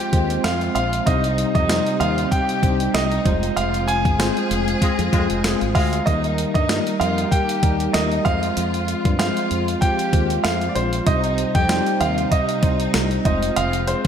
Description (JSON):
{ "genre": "1980s-style pop", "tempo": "96 BPM", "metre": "4/4", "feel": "swing 55% on 16ths", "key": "unclear", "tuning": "A4 = 440 Hz", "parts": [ { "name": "clear baby grand piano", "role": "melody", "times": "0.0-14.1 s", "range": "C5 to Ab5", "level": "-23 LUFS", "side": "right 2 dB", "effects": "tape echo, slapback echo" }, { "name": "rich studio violin section", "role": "second line", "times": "0.0-14.1 s", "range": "C4 to Ab4", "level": "-31 LUFS", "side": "left 1 dB", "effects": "tape echo, slapback echo" }, { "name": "tine electric piano", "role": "accompaniment", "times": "0.0-14.1 s", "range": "C3 to C5", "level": "-24 LUFS", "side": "left 1 dB", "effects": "medium stereo tremolo, slapback echo" }, { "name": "ensemble organ-string", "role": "sustained chords", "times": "0.0-14.1 s", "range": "C3 to Bb4", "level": "-30 LUFS", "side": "left 1 dB", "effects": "ensemble chorus" }, { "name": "mellow fretless electric bass", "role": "bass", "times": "0.1-14.1 s", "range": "F1 to G2", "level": "-25 LUFS", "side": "equal", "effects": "analog chorus" }, { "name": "clean 12-bit digital drum machine", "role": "drums", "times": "0.1-14.1 s", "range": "hi-hat, kick drum, snare drum, tambourine", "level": "-22 LUFS", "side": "equal", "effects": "none" }, { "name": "dark horn section", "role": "stabs", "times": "4.8-6.0 s", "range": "Ab3 to Ab4", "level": "-28 LUFS", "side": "left 1 dB", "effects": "tape echo" } ], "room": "moderate lush hall reverb, RT60 2.2 s", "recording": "big arena sound", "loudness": "-17 LUFS", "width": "side -8 dB against mid", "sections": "0.0-14.1 A section", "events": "band accent 3.6-6.1", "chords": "0.0 Fm; 1.1 Cm; 3.3 Fm; 6.1 Eb; 8.3 Fm; 11.1 Cm; 13.3 Fm" }